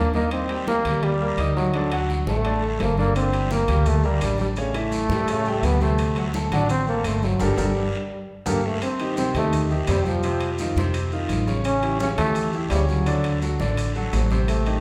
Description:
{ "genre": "latin, salsa", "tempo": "169 BPM", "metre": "4/4", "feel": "straight", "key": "unclear", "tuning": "A4 = 438 Hz", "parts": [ { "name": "warm trombone", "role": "melody", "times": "0.0-14.8 s", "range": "F3 to D4", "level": "-27 LUFS", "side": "equal", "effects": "none" }, { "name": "bright concert grand piano", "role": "accompaniment", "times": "0.0-14.8 s", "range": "C3 to Eb6", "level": "-30 LUFS", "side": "equal", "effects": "none" }, { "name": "upright bass", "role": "bass", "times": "0.0-14.8 s", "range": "G1 to A2", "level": "-27 LUFS", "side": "equal", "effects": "none" }, { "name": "congas", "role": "percussion", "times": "0.1-14.8 s", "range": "none", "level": "-32 LUFS", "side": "equal", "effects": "none" }, { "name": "guiro", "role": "percussion", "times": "0.1-14.8 s", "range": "none", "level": "-41 LUFS", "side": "equal", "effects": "none" }, { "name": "timbales", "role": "percussion", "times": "0.3-14.8 s", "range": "none", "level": "-38 LUFS", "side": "equal", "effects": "none" }, { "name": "maracas", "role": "percussion", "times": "3.2-14.8 s", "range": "none", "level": "-44 LUFS", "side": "equal", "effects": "none" } ], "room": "wet large studio reverb, RT60 1.4 s", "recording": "heard from further back in the room, faint mains hum", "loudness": "-23 LUFS", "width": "mono", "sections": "0.0-8.8 A section; 8.8-14.8 B section", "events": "drum fill 7.4-8.8; band accent 7.4-8.8", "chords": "0.3 Eb; 1.7 D; 3.2 Gm; 4.6 A7; 6.0 D7; 7.4 Gmadd9; 8.8 Am7b5; 10.2 F7; 11.7 A7; 13.1 D7", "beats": "| 0.32 0.68 1.03 1.39 | 1.74 2.09 2.45 2.80 | 3.16 3.51 3.87 4.22 | 4.57 4.93 5.28 5.64 | 5.99 6.34 6.70 7.05 | 7.41 7.76 8.12 8.47 | 8.82 9.18 9.53 9.89 | 10.24 10.60 10.95 11.30 | 11.66 12.01 12.37 12.72 | 13.07 13.43 13.78 14.13 | 14.49" }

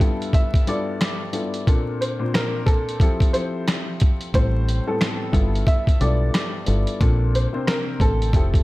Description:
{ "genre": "hip hop, boom-bap hip-hop", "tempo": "90 BPM", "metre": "4/4", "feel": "swing 59% on 16ths", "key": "unclear", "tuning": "A4 = 440 Hz", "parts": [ { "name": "clear upright piano", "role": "melody", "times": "0.0-8.6 s", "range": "A4 to E5", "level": "-28 LUFS", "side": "equal", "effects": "slapback echo" }, { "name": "dark upright piano", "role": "accompaniment", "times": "0.0-8.6 s", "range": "G2 to C5", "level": "-26 LUFS", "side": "left 2 dB", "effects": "cassette tape" }, { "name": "dusty soul sampler-style drum kit", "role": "drums", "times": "0.0-8.6 s", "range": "hi-hat, kick drum, rim click, snare drum", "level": "-20 LUFS", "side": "equal", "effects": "none" }, { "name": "deep dub fingered electric bass", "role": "bass", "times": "4.3-8.6 s", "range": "F1 to B1", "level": "-20 LUFS", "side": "equal", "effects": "none" } ], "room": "studio reverb", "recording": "vinyl crackle", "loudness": "-18 LUFS", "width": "side -19 dB against mid", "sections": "0.0-8.6 A section", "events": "none", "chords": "0.0 G13; 1.7 Bbmaj9; 3.0 Fmaj7; 4.3 Am9; 5.3 G13; 7.0 Bbmaj9", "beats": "0.34 1.01 | 1.68 2.34 3.01 3.68 | 4.34 5.01 5.68 6.34 | 7.01 7.68 8.34" }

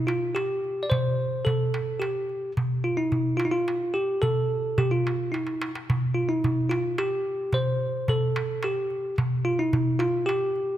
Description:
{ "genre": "Arabic maqam ensemble", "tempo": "109 BPM", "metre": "3/4", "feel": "straight", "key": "unclear", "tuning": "A4 = 440 Hz", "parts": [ { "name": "bell-like tine electric piano", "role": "melody", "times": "0.0-10.8 s", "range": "E4-50c to D5", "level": "-26 LUFS", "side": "equal", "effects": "none" }, { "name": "darbuka", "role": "percussion", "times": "0.1-10.6 s", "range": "none", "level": "-27 LUFS", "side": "right 1 dB", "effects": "none" } ], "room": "wet concert hall reverb, RT60 2.2 s", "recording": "close, detailed microphones", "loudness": "-24 LUFS", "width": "side -12 dB against mid", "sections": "0.0-10.8 A section", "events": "drum fill 5.3-5.9", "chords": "none", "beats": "0.35 | 0.90 1.46 2.01 | 2.56 3.11 3.66 | 4.21 4.77 5.32 | 5.87 6.42 6.97 | 7.53 8.08 8.63 | 9.18 9.73 10.29" }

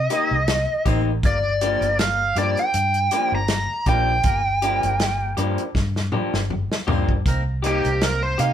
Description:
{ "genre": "straight-eighth soul blues", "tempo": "80 BPM", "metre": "4/4", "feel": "swing 55% on 16ths", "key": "G minor", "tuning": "A4 = 440 Hz", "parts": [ { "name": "biting lead guitar", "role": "melody", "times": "0.0-8.5 s", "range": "G4 to Bb5", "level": "-21 LUFS", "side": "right 1 dB", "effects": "overdrive" }, { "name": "vintage muted fingered electric bass", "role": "bass", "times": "0.0-8.5 s", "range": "G1 to C3", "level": "-24 LUFS", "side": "equal", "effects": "none" }, { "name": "electric guitar through a small old amp", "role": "stabs", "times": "0.1-8.5 s", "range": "Eb3 to G4", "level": "-26 LUFS", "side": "left 3 dB", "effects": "none" }, { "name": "warm soul drum kit", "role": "drums", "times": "0.1-8.5 s", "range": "hi-hat, kick drum, snare drum, toms", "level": "-24 LUFS", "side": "equal", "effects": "none" }, { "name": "mellow horn section", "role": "sustained chords", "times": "0.9-8.4 s", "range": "Bb3 to C5", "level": "-34 LUFS", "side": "equal", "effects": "none" } ], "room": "moderate studio reverb, RT60 0.7 s", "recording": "band playing live in one room", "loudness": "-19 LUFS", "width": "side -10 dB against mid", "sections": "0.0-8.5 A section", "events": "drum fill 5.7-7.3", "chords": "0.0 Cm7; 1.2 Gm7; 7.3 Cm7", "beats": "0.48 | 1.23 1.98 2.74 3.49 | 4.24 4.99 5.75 6.50 | 7.25 8.01" }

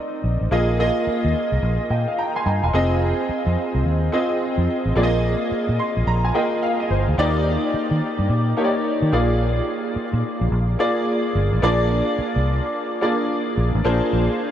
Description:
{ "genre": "R&B, new jack swing", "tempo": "108 BPM", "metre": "4/4", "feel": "swing 62% on 16ths", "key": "unclear", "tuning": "A4 = 440 Hz", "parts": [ { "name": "clear concert grand piano", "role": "accompaniment", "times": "0.0-14.5 s", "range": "Bb3 to C6", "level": "-20 LUFS", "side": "equal", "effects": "analog chorus" }, { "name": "vintage muted fingered electric bass", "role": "bass", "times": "0.2-14.3 s", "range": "E1 to Eb3", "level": "-20 LUFS", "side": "equal", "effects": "none" } ], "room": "wet huge ambient reverb, RT60 7.5 s", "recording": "dreamy mix soaked in reverb", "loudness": "-18 LUFS", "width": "side -10 dB against mid", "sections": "0.0-2.7 A section; 2.7-11.6 B section; 11.6-14.5 C section", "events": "grand piano fill 1.6-2.7, 5.5-7.2", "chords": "0.0 Cm9; 0.5 Bb7sus4; 2.7 Fm7; 5.0 Bb7sus4; 7.2 Ebmaj7; 9.1 Bb7", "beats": "| 0.51 1.07 1.62 2.18 | 2.73 3.29 3.85 4.40 | 4.96 5.51 6.07 6.62 | 7.18 7.73 8.29 8.85 | 9.40 9.96 10.51 11.07 | 11.62 12.18 12.73 13.29 | 13.85 14.40" }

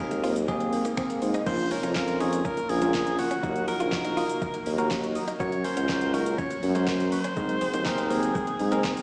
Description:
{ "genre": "dance-pop", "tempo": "122 BPM", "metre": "4/4", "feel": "straight", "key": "Bb minor", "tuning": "A4 = 439 Hz", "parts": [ { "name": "edgy alto saxophone", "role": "melody", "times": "0.0-9.0 s", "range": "Gb4 to Db5", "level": "-34 LUFS", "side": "equal", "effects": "dub echo" }, { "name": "bell-like tine electric piano", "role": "accompaniment", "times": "0.0-9.0 s", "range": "Bb3 to Db5", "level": "-33 LUFS", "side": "equal", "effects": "sidechain pumping" }, { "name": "granular cloud pad", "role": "sustained chords", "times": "0.2-9.0 s", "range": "C3 to Gb4", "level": "-41 LUFS", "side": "equal", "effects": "none" }, { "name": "thumb-piano-like synth pluck", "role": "arpeggios", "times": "0.0-9.0 s", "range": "F3 to Eb6", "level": "-41 LUFS", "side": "equal", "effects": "none" }, { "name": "direct-recorded clean electric guitar", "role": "riff", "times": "0.0-9.0 s", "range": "Ab3 to Gb4", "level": "-38 LUFS", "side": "equal", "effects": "analog chorus" }, { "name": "warm tuba", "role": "bass", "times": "0.0-8.9 s", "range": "Bb1 to Ab2", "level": "-30 LUFS", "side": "equal", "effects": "sidechain pumping" }, { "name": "smooth R&B drum kit", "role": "drums", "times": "0.1-9.0 s", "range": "crash cymbal, finger snaps, handclaps, hi-hat, kick drum, shaker, snare drum", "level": "-38 LUFS", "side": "equal", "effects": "none" }, { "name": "tambourine", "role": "percussion", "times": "2.0-9.0 s", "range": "none", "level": "-51 LUFS", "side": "equal", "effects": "none" } ], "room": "moderate lush hall reverb, RT60 2.2 s", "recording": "played on a big sound system in a bare room, stone room reverb, small speaker sound", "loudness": "-27 LUFS", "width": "mono", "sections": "0.0-1.5 A section; 1.5-9.0 B section", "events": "none", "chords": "0.0 Abadd9; 1.5 Bbm; 3.4 Ebm; 5.4 Gb; 7.4 Abadd9", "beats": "0.48 0.97 | 1.47 1.96 2.45 2.94 | 3.43 3.92 4.42 4.91 | 5.40 5.89 6.38 6.88 | 7.37 7.86 8.35 8.84" }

